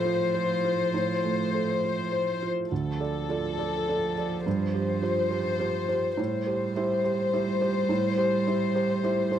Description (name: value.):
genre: neoclassical piano and strings.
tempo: 104 BPM.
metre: 3/4.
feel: rubato.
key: A minor.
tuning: A4 = 440 Hz.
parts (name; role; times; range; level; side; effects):
warm chamber violin section; melody; 0.0-9.4 s; A4 to C5; -28 LUFS; left 7 dB; none.
warm cello; second line; 0.0-9.4 s; F3 to G3; -31 LUFS; right 4 dB; none.
felt-muted upright piano; accompaniment; 0.0-9.4 s; D2 to D5; -29 LUFS; right 5 dB; none.
room: moderate booth ambience, RT60 0.2 s.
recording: dry, close 1970s-style studio recording.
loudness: -24 LUFS.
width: side -10 dB against mid.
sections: 0.0-2.7 A section; 2.7-9.4 B section.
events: none.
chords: 0.0 F/A; 2.7 Dm; 4.5 G7sus4; 6.2 Am7.